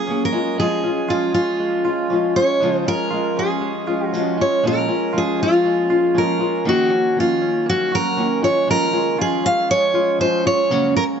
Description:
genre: acoustic pop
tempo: 118 BPM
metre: 4/4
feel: swing 60% on 16ths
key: Db major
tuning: A4 = 440 Hz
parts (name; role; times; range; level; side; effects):
- picked steel-string acoustic guitar; melody; 0.0-11.0 s; F4 to F5; -18 LUFS; right 1 dB; none
- nylon-string guitar; accompaniment; 0.0-11.2 s; Gb2 to Ab4; -22 LUFS; left 2 dB; none
- ethereal airy pad; sustained chords; 0.0-11.2 s; Eb3 to Bb4; -30 LUFS; left 2 dB; ensemble chorus, built-in reverb
- direct-recorded clean electric guitar; arpeggios; 0.0-11.2 s; Eb3 to Ab4; -28 LUFS; right 7 dB; spring reverb
room: light reverb, small room ambience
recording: nothing above 7.8 kHz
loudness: -16 LUFS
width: side -7 dB against mid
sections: 0.0-4.6 A section; 4.6-11.2 A section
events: none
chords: 0.3 Db/F; 2.6 Db; 4.6 Bbm7; 6.7 Ebm7; 8.4 Db/F

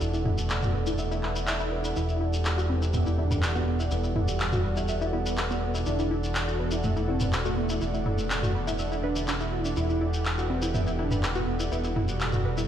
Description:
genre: melodic techno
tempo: 123 BPM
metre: 4/4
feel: straight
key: E minor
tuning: A4 = 437 Hz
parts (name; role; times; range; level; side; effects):
- lush unison pad; sustained chords; 0.0-12.7 s; E3 to A4; -36 LUFS; right 2 dB; chorus
- tight sequenced synth; arpeggios; 0.0-12.6 s; B3 to E5; -34 LUFS; left 1 dB; chorus, tape echo
- fat analog bass; bass; 0.0-12.7 s; E1; -30 LUFS; equal; none
- bowed-like drone; drone; 0.0-12.7 s; E2 to B2; -38 LUFS; equal; none
- shekere; percussion; 0.0-12.7 s; none; -40 LUFS; left 2 dB; none
- airy breathy pad; texture; 0.0-12.7 s; A4 to F#5; -36 LUFS; right 2 dB; chorus
- punchy analog drum machine; drums; 0.3-12.4 s; handclaps, toms; -30 LUFS; equal; none
- swell; sound effects; 1.2-2.0 s; none; -39 LUFS; right 2 dB; none
- wide unison lead; melody; 2.0-12.0 s; A3 to E4; -34 LUFS; right 2 dB; dub echo
room: moderate recital hall reverb, RT60 1.8 s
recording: played on a big sound system in a bare room, stone room reverb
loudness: -25 LUFS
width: side -10 dB against mid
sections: 0.0-12.7 A section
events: filter sweep on synth arpeggio sound 0.0-12.7; swell 1.2-2.0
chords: 0.0 Bm7/E; 2.0 Em7; 5.9 Dadd9/E; 7.8 Bm7/E; 9.8 Em7

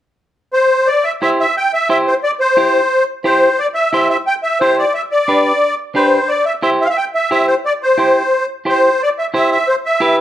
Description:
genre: latin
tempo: 178 BPM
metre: 4/4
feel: straight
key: C major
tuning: A4 = 440 Hz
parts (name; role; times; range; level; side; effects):
- musette accordion; melody; 0.5-10.2 s; C5 to G5; -13 LUFS; equal; none
- clean electric guitar; accompaniment; 1.2-10.2 s; D4 to C5; -16 LUFS; right 1 dB; none
room: moderate large studio reverb, RT60 0.9 s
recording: none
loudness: -12 LUFS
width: side -12 dB against mid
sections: 0.9-10.2 A section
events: none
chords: 0.0 N.C.; 0.9 C; 4.9 G; 6.3 C

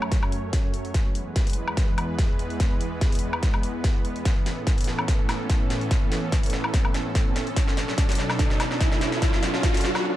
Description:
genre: heavy wobble dubstep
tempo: 145 BPM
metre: 4/4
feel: swing 54% on 16ths, half-time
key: unclear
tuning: A4 = 440 Hz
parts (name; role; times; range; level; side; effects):
- supersaw pad; sustained chords; 0.0-10.2 s; E2 to C#5; -29 LUFS; right 1 dB; sidechain pumping
- big-room dance drum kit; drums; 0.0-10.0 s; hi-hat, snare drum, woodblock; -30 LUFS; left 1 dB; high-pass filter on hats, high-pass filter on toms, high-pass filter on snare, high-pass filter on perc
- electronic kick drum; drums; 0.1-9.7 s; none; -23 LUFS; equal; none
- riser and reverse cymbal; sound effects; 5.5-10.2 s; none; -30 LUFS; equal; none
room: little or no reverb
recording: dark, warm production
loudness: -22 LUFS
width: side -14 dB against mid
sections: 0.0-10.2 A section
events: build-up 0.0-10.2; drum fill 0.0-10.0; riser 5.5-10.0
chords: 0.0 F#m; 0.9 E; 4.3 Aadd9; 7.6 Bm7

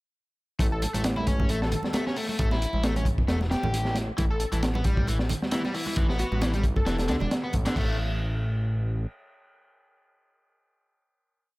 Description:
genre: breakbeat, breaks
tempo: 134 BPM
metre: 4/4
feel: swing 55% on 16ths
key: A mixolydian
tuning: A4 = 439 Hz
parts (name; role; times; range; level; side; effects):
- overdriven electric guitar; riff; 0.6-8.0 s; D3 to G4; -32 LUFS; left 1 dB; vintage 12-bit sampler grit, dub echo
- fat analog bass; bass; 0.6-9.1 s; E1 to D2; -27 LUFS; equal; none
- crunchy breakbeat drum kit; drums; 0.6-7.9 s; crash cymbal, hi-hat, kick drum, snare drum; -27 LUFS; equal; none
- congas; percussion; 0.6-7.6 s; none; -36 LUFS; right 3 dB; none
- plucky unison lead; melody; 0.7-7.2 s; F#4 to A4; -37 LUFS; left 1 dB; old record sound, dub echo
room: small room reverb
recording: none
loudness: -24 LUFS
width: side -21 dB against mid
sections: 0.6-7.8 drop; 7.8-11.3 final chord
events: drop 0.6-7.8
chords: 0.6 A7(no3); 4.2 E5/A; 7.8 N.C.

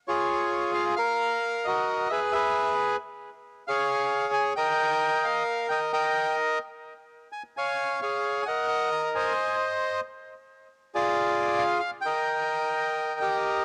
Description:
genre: tango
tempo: 133 BPM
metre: 4/4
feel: rubato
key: unclear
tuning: A4 = 440 Hz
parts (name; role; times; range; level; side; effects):
- bandoneon; solo; 0.1-13.6 s; F4 to Bb5; -27 LUFS; equal; cassette tape
room: light reverb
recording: home recording on cassette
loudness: -27 LUFS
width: mono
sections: 0.0-13.6 A section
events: none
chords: 0.3 Db; 1.2 Ebmadd9; 2.1 E; 3.0 Db/Ab; 3.9 Bbm7; 4.8 Eb; 6.6 N.C.; 7.5 Db; 8.5 Eb5; 9.4 Cm; 10.3 Fm6; 12.1 Eb

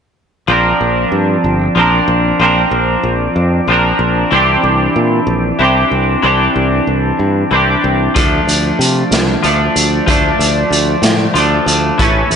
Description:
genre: indie rock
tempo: 63 BPM (dotted quarters)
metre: 6/8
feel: straight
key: D minor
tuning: A4 = 440 Hz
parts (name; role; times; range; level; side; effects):
- twelve-string electric guitar; riff; 0.5-12.4 s; E3 to Bb4; -12 LUFS; equal; double-tracked left and right, slapback echo
- modern bright fingered electric bass; bass; 0.5-12.4 s; G1 to C3; -16 LUFS; equal; none
- raw garage drum kit; drums; 8.2-12.4 s; hi-hat, kick drum, snare drum; -16 LUFS; equal; none
room: moderate concert hall reverb, RT60 1.8 s, small room ambience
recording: big arena sound, nothing above 10.7 kHz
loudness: -10 LUFS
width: side -7 dB against mid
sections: 0.5-12.4 A section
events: none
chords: 0.5 Bbadd9; 4.3 Cadd9; 8.2 Dm

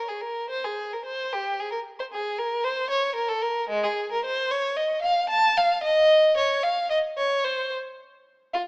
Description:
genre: classical, baroque-style suite movement for unaccompanied violin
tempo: 111 BPM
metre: 3/4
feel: rubato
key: unclear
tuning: A4 = 440 Hz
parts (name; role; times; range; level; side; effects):
- rich violin; solo; 0.0-8.6 s; Ab3 to A5; -22 LUFS; equal; none
room: wet recital hall reverb, RT60 1.6 s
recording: small speaker sound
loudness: -22 LUFS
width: side -35 dB against mid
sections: 0.0-8.7 A section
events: none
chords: none

